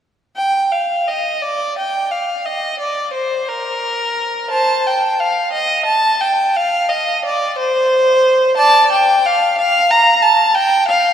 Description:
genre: classical, baroque-style suite movement for unaccompanied violin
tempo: 59 BPM (dotted quarters)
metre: 6/8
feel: rubato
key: unclear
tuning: A4 = 440 Hz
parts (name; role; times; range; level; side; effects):
- warm violin; solo; 0.4-11.1 s; Bb4 to Bb5; -13 LUFS; equal; none
room: wet church reverb, RT60 3.1 s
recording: none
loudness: -13 LUFS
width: side -9 dB against mid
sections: 0.4-11.1 A section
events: none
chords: none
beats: | 0.36 1.42 | 2.46 3.50 | 4.52 5.53 | 6.55 7.56 | 8.55 9.55 | 10.54

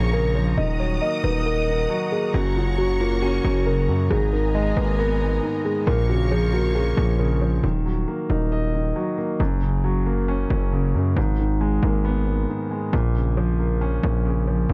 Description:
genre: hip hop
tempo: 136 BPM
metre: 4/4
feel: half-time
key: Eb minor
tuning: A4 = 440 Hz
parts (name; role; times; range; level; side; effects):
- muted felt-like synth keys; melody; 0.0-7.4 s; F4 to Eb5; -28 LUFS; equal; chorus, low-pass filter, delay
- dark baby grand piano; accompaniment; 0.0-14.7 s; Gb2 to Eb5; -26 LUFS; equal; low-pass filter
- warm symphonic string section; sustained chords; 0.0-7.6 s; Bb4 to Eb6; -34 LUFS; equal; none
- distorted 808-style bass; bass; 0.0-14.7 s; Eb1 to Gb2; -25 LUFS; equal; distortion
room: studio ambience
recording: none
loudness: -22 LUFS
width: mono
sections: 0.0-7.6 A section; 7.6-14.7 B section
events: none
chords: 0.0 Bbm; 0.6 Ebm; 2.3 Gb; 4.1 Abmadd9; 5.9 Bbm; 7.6 Ebm; 9.4 Gb; 11.2 Abmadd9; 12.9 Bbm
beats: 0.14 | 0.58 1.02 1.46 1.90 | 2.34 2.78 3.22 3.67 | 4.11 4.55 4.99 5.43 | 5.87 6.31 6.75 7.19 | 7.64 8.08 8.52 8.96 | 9.40 9.84 10.28 10.72 | 11.16 11.61 12.05 12.49 | 12.93 13.37 13.81 14.25 | 14.69

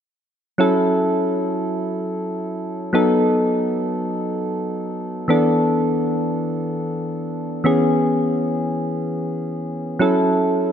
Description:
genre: R&B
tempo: free time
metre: none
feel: none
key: F# minor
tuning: A4 = 435 Hz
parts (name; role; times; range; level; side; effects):
- soft electric-piano-like synth keys; accompaniment; 0.6-10.7 s; E3 to A4; -18 LUFS; equal; chorus
room: moderate lush hall reverb, RT60 2.6 s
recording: dark, warm production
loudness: -18 LUFS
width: side -8 dB against mid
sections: 0.6-10.0 A section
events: none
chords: 0.6 F#m7; 2.9 B7; 5.3 E7sus4; 7.7 C#m7; 10.0 F#m7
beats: free time

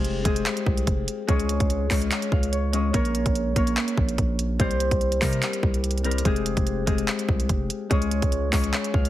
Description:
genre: hip hop, trap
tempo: 145 BPM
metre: 4/4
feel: half-time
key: F harmonic minor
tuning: A4 = 442 Hz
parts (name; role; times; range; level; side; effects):
- Celtic harp; accompaniment; 0.0-9.1 s; G3 to F5; -26 LUFS; left 2 dB; none
- distorted 808-style bass; bass; 0.0-9.1 s; F1 to C3; -26 LUFS; equal; distortion
- trap drum kit; drums; 0.0-9.1 s; handclaps, hi-hat, kick drum; -24 LUFS; equal; none
room: little or no reverb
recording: heavily compressed radio sound, multiband compression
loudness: -21 LUFS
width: side -14 dB against mid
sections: 0.0-9.1 A section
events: none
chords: 0.0 Fmadd9; 1.3 Db; 2.9 Bbm; 4.6 C; 6.3 Fmadd9; 7.9 Db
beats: 0.04 0.46 0.87 | 1.29 1.70 2.11 2.53 | 2.94 3.35 3.77 4.18 | 4.60 5.01 5.42 5.84 | 6.25 6.67 7.08 7.49 | 7.91 8.32 8.73

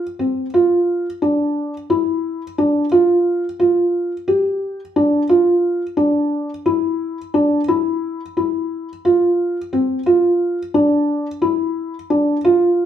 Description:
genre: progressive instrumental, progressive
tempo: 176 BPM (eighths)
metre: 7/8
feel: straight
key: unclear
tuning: A4 = 440 Hz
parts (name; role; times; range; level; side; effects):
- felt-muted upright piano; solo; 0.0-12.9 s; C4 to G4; -15 LUFS; equal; none
room: wet studio reverb, RT60 0.8 s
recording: band playing live in one room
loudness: -16 LUFS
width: side -10 dB against mid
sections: 0.0-10.1 A section; 10.1-12.9 B section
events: none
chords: none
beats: 0.20 | 0.54 0.88 1.22 1.55 1.90 2.24 2.58 | 2.92 3.26 3.60 3.94 4.28 4.62 4.96 | 5.30 5.64 5.98 6.32 6.66 7.00 7.34 | 7.68 8.02 8.36 8.70 9.04 9.38 9.72 | 10.06 10.40 10.74 11.08 11.42 11.76 12.10 | 12.44 12.78

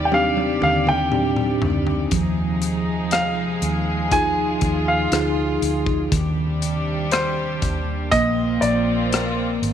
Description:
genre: pop ballad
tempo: 60 BPM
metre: 4/4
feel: straight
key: unclear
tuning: A4 = 440 Hz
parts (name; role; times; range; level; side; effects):
- clear baby grand piano; melody; 0.0-9.6 s; C5 to Ab5; -23 LUFS; right 1 dB; none
- mellow tine electric piano; accompaniment; 0.0-9.7 s; Eb3 to Ab4; -23 LUFS; equal; medium stereo tremolo
- warm studio string section; sustained chords; 0.0-9.7 s; C3 to D5; -28 LUFS; equal; none
- vintage muted fingered electric bass; bass; 0.0-9.7 s; Ab1 to Eb2; -26 LUFS; equal; none
- modern studio drum kit; drums; 0.1-9.7 s; hi-hat, kick drum, rim click, toms; -25 LUFS; left 3 dB; none
room: light reverb, small room ambience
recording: 1960s-style stereo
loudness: -18 LUFS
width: side -9 dB against mid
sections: 0.0-9.7 A section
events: drum fill 0.1-2.1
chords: 0.0 Csus2/Eb; 2.1 Fm7/Eb; 6.1 Csus2/Eb; 8.1 Bbadd9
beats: 0.12 1.12 | 2.12 3.12 4.12 5.12 | 6.12 7.12 8.12 9.12

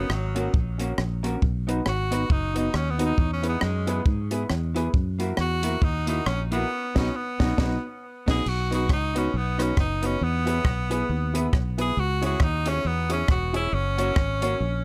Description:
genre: ska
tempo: 136 BPM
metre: 4/4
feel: swing 59% on 8ths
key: B major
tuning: A4 = 440 Hz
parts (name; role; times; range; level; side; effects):
- edgy tenor saxophone; melody; 0.0-14.8 s; F#3 to G#4; -31 LUFS; equal; tape echo
- vintage hollow-body jazz guitar; accompaniment; 0.0-14.5 s; A#3 to G#4; -33 LUFS; equal; none
- dark upright piano; stabs; 0.0-14.6 s; C#4 to C#5; -35 LUFS; equal; none
- fingered electric bass; bass; 0.0-14.8 s; E1 to G#2; -29 LUFS; equal; none
- compact cocktail drum kit; drums; 0.1-14.5 s; crash cymbal, hi-hat, kick drum, rim click, snare drum; -27 LUFS; equal; none
room: moderate club ambience, RT60 0.5 s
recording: none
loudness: -25 LUFS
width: mono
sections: 0.0-8.5 A section; 8.5-14.8 B section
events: band accent 6.7-8.5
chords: 0.0 F#; 1.4 B; 3.2 E; 4.9 F#7; 6.7 B; 10.2 E; 12.0 C#m; 13.7 F#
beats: 0.10 0.54 0.98 | 1.42 1.86 2.30 2.74 | 3.18 3.62 4.06 4.50 | 4.94 5.38 5.82 6.26 | 6.70 7.14 7.58 8.02 | 8.46 8.90 9.34 9.78 | 10.22 10.66 11.10 11.53 | 11.97 12.41 12.85 13.29 | 13.73 14.17 14.61

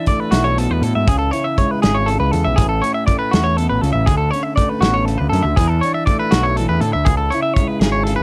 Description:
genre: math rock and midwest emo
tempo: 80 BPM (dotted quarters)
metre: 6/8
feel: straight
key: A major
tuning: A4 = 440 Hz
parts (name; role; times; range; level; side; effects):
- electric guitar through a small old amp; accompaniment; 0.0-8.2 s; A2 to G#4; -24 LUFS; equal; none
- twangy electric guitar; arpeggios; 0.0-8.2 s; F#4 to E5; -22 LUFS; equal; none
- loose indie drum kit; drums; 0.1-8.2 s; hi-hat, kick drum, snare drum; -20 LUFS; equal; none
- growling picked electric bass; bass; 0.3-8.2 s; G#1 to A2; -21 LUFS; equal; overdrive
room: little or no reverb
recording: dark, warm production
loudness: -17 LUFS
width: mono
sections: 0.0-8.2 A section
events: none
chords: 0.0 E9sus4; 1.1 C#m7; 2.6 Aadd9; 5.6 E9sus4; 7.1 C#m7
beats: 0.33 | 1.08 1.83 | 2.58 3.33 | 4.08 4.83 | 5.58 6.33 | 7.07 7.82

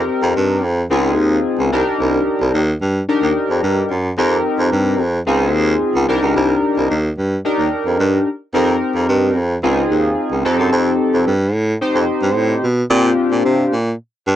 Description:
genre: early-eighties boogie funk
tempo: 110 BPM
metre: 4/4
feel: straight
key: C minor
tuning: A4 = 435 Hz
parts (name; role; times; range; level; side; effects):
- chorused polysynth; accompaniment; 0.0-13.7 s; C4 to C5; -16 LUFS; left 1 dB; none
- clear baritone saxophone; bass; 0.0-14.4 s; C2 to C3; -16 LUFS; right 1 dB; none
room: light reverb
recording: dry, close 1970s-style studio recording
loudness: -14 LUFS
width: side -11 dB against mid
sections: 0.0-12.9 A section; 12.9-14.4 B section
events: none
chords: 0.0 F7sus4; 0.9 Dbmaj9; 1.7 Cm9; 4.2 F7sus4; 5.3 Dbmaj9; 6.1 Cm9; 8.5 F7sus4; 9.6 Dbmaj9; 10.5 F7; 12.9 Bb69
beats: 0.36 0.91 1.45 | 2.00 2.54 3.09 3.63 | 4.18 4.72 5.27 5.82 | 6.36 6.91 7.45 8.00 | 8.54 9.09 9.63 10.18 | 10.72 11.27 11.81 12.36 | 12.91 13.45 14.00

